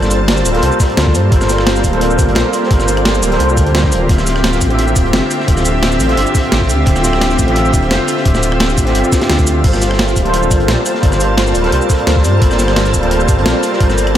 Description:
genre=liquid drum and bass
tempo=173 BPM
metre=4/4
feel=straight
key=G minor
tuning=A4 = 441 Hz
part: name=overdriven tine electric piano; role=accompaniment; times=0.0-14.2 s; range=D3 to E5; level=-16 LUFS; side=equal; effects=ensemble chorus, analog delay
part: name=shimmering ambient pad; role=sustained chords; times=0.0-14.2 s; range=Bb3 to A5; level=-19 LUFS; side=equal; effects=chorus, built-in reverb, vintage 12-bit sampler grit
part: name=dark detuned saw bass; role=bass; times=0.0-14.2 s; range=D1 to G2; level=-16 LUFS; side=equal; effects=none
part: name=breakbeat sampler-style drum kit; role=drums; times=0.0-14.2 s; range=crash cymbal, hi-hat, rim click, shaker, snare drum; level=-20 LUFS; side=equal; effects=none
part: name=crunchy breakbeat drum kit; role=drums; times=0.0-14.2 s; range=hi-hat, snare drum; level=-24 LUFS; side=equal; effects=high-pass filter on hats, high-pass filter on snare, high-pass filter on room
part: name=electronic kick drum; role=drums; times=0.8-13.9 s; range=none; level=-15 LUFS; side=equal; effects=none
room=moderate lush hall reverb, RT60 1.9 s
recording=dreamy mix soaked in reverb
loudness=-10 LUFS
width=side -11 dB against mid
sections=0.0-14.2 A section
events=none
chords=0.0 Gm11; 4.1 Dm11; 9.6 Gm11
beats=0.28 0.63 0.97 | 1.32 1.67 2.01 2.36 | 2.71 3.06 3.40 3.75 | 4.09 4.44 4.79 5.14 | 5.48 5.83 6.18 6.52 | 6.87 7.22 7.56 7.91 | 8.26 8.60 8.95 9.30 | 9.64 9.99 10.34 10.69 | 11.03 11.38 11.72 12.07 | 12.42 12.77 13.11 13.46 | 13.81 14.15

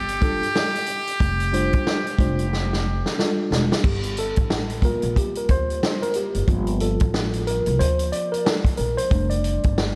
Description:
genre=hip hop, jazz-hop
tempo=91 BPM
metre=4/4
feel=swing 60% on 16ths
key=G minor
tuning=A4 = 444 Hz
part: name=trumpet with metal mute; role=melody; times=0.0-3.2 s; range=G4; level=-28 LUFS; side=equal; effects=delay
part: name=upright bass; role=bass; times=0.0-10.0 s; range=E1 to D2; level=-27 LUFS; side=equal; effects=none
part: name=vintage drum kit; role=drums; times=0.1-10.0 s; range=crash cymbal, hi-hat, kick drum, snare drum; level=-25 LUFS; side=equal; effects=none
part: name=tine electric piano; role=accompaniment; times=0.2-10.0 s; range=F3 to D5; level=-28 LUFS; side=equal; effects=none
room=moderate lush hall reverb, RT60 2.2 s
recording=dreamy mix soaked in reverb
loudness=-22 LUFS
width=mono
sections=0.0-3.8 A section; 3.8-10.0 B section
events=drum fill 2.5-3.8; tine electric piano solo 3.8-10.0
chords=0.0 F69; 3.8 Gm9; 9.1 F69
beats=0.55 | 1.20 1.86 2.52 3.18 | 3.84 4.50 5.16 5.82 | 6.48 7.14 7.80 8.46 | 9.12 9.78

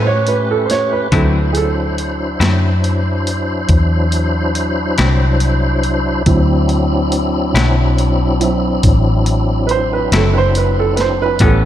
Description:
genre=slow blues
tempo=47 BPM (dotted quarters)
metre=12/8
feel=straight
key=unclear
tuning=A4 = 437 Hz
part: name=semi-hollow electric guitar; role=accompaniment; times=0.0-11.7 s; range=A2 to E4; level=-22 LUFS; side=left 5 dB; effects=tremolo, slapback echo
part: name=warm upright piano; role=accompaniment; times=0.0-11.7 s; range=F#3 to C#5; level=-18 LUFS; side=right 5 dB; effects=slapback echo
part: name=tonewheel organ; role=sustained chords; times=0.0-11.7 s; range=F#3 to C5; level=-18 LUFS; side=left 1 dB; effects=slow rotary speaker, overdrive, chorus vibrato
part: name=vintage muted fingered electric bass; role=bass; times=0.0-11.7 s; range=F#1 to A2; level=-16 LUFS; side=left 1 dB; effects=none
part: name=boom bap sampler-style drum kit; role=drums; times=0.3-11.6 s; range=hi-hat, kick drum, snare drum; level=-19 LUFS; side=equal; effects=none
room=light reverb, digital ambience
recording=none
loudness=-12 LUFS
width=side -11 dB against mid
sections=0.0-11.7 A section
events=upright piano solo 0.0-11.7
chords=0.0 A9; 1.1 D9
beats=| 1.12 2.41 3.69 4.98 | 6.27 7.56 8.85 10.14 | 11.43

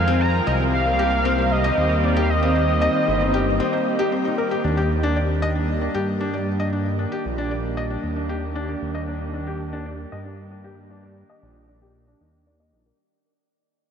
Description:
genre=IDM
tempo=115 BPM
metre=4/4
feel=straight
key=Eb major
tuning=A4 = 438 Hz
part: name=warm velvety synth lead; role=melody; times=0.0-4.4 s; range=D5 to Bb5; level=-24 LUFS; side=equal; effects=chorus, analog delay
part: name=warbly tape-like pad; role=sustained chords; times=0.0-13.0 s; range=Eb3 to G4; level=-26 LUFS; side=right 1 dB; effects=chorus, built-in reverb
part: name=dark detuned saw bass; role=bass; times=0.0-12.9 s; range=G1 to G2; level=-24 LUFS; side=equal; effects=tube saturation
part: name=bubbling stepped-filter texture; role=texture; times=0.0-4.7 s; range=Bb4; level=-34 LUFS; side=right 3 dB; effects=none
part: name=felt-muted upright piano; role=arpeggios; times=0.1-12.9 s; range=C4 to Eb5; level=-26 LUFS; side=left 3 dB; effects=low-pass filter, analog delay
room=wet huge ambient reverb, RT60 7.0 s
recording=dreamy mix soaked in reverb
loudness=-19 LUFS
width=side -7 dB against mid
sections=0.0-4.6 A section; 4.6-13.0 B section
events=break 3.6-4.6; fade-out 4.6-13.0; filter sweep on felt piano 4.6-13.0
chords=0.5 Cm7; 4.6 Ebmaj7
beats=| 0.47 0.99 1.51 2.03 | 2.56 3.08 3.60 4.12 | 4.64 5.16 5.68 6.21 | 6.73 7.25 7.77 8.29 | 8.82 9.34 9.86 10.38 | 10.90 11.43 11.95 12.47

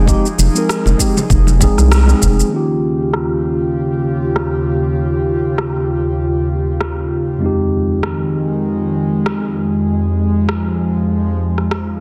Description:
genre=sunset chillout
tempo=98 BPM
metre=4/4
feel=swing 56% on 16ths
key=unclear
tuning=A4 = 437 Hz
part: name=clean electric guitar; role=melody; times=0.0-1.9 s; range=Ab4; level=-46 LUFS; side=equal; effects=none
part: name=mellow tine electric piano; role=accompaniment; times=0.0-12.0 s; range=F2 to Bb4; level=-22 LUFS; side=equal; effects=delay
part: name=airy breathy pad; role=sustained chords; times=0.0-12.0 s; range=Eb2 to Ab4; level=-20 LUFS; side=equal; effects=chorus
part: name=round analog bass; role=bass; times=0.0-2.4 s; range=F1 to C2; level=-14 LUFS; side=equal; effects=none
part: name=electronic kick drum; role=drums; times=0.1-2.4 s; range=none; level=-18 LUFS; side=equal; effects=none
part: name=electronic shaker and rim click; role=drums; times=0.1-11.8 s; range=none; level=-24 LUFS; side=equal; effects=low-pass filter on perc, soft clipping on snare, low-pass filter on snare
part: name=congas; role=percussion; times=0.4-1.7 s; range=none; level=-25 LUFS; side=equal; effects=none
room=moderate plate reverb, RT60 1.5 s, digital ambience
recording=dense, heavily limited modern master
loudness=-16 LUFS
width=mono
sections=0.0-2.5 A section; 2.5-12.0 B section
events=band accent 1.9-2.2; filter sweep on drum 2.5-12.0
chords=0.0 Fm7; 2.5 Eb9; 7.4 Fm7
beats=| 0.08 0.69 1.30 1.91 | 2.53 3.14 3.75 4.36 | 4.97 5.59 6.20 6.81 | 7.42 8.04 8.65 9.26 | 9.87 10.48 11.10 11.71

